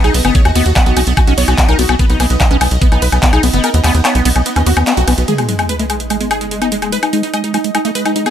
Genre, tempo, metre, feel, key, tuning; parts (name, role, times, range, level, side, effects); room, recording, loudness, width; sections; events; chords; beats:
psychedelic trance; 146 BPM; 4/4; straight; G# minor; A4 = 444 Hz
supersaw stab; melody; 0.0-8.3 s; G#3 to F#5; -19 LUFS; right 1 dB; phaser, sidechain pumping, tape echo
evolving wavetable pad; sustained chords; 0.0-8.3 s; D#4 to D#5; -24 LUFS; right 4 dB; chorus, built-in reverb, phaser, sidechain pumping
liquid acid bass; riff; 0.0-8.3 s; F#3 to F#4; -19 LUFS; moving between left 6 dB and right 8 dB; chorus, auto-pan, sidechain pumping, tape echo
tight sequencer bass; bass; 0.0-5.2 s; F#1 to D#2; -13 LUFS; equal; tube saturation
big-room dance drum kit; drums; 0.0-8.3 s; handclaps, hi-hat, ride cymbal, woodblock; -17 LUFS; left 2 dB
electronic kick drum; drums; 0.3-3.3 s; -12 LUFS; equal
sub drop; sound effects; 5.3-6.9 s; -22 LUFS; equal
light reverb, digital ambience; -11 LUFS; side -10 dB against mid
0.0-5.3 A section; 5.3-8.3 B section
drop 0.0-5.3; kick drops out 3.6-5.3; band accent 4.9; impact 5.3-6.9; filter sweep on acid bass 5.3-8.3; filter sweep on ambient pad 5.3-8.3
0.0 B5; 5.3 G#5
| 0.35 0.76 1.17 1.58 | 1.99 2.40 2.81 3.23 | 3.64 4.05 4.46 4.87 | 5.28 5.69 6.10 6.51 | 6.92 7.34 7.75 8.16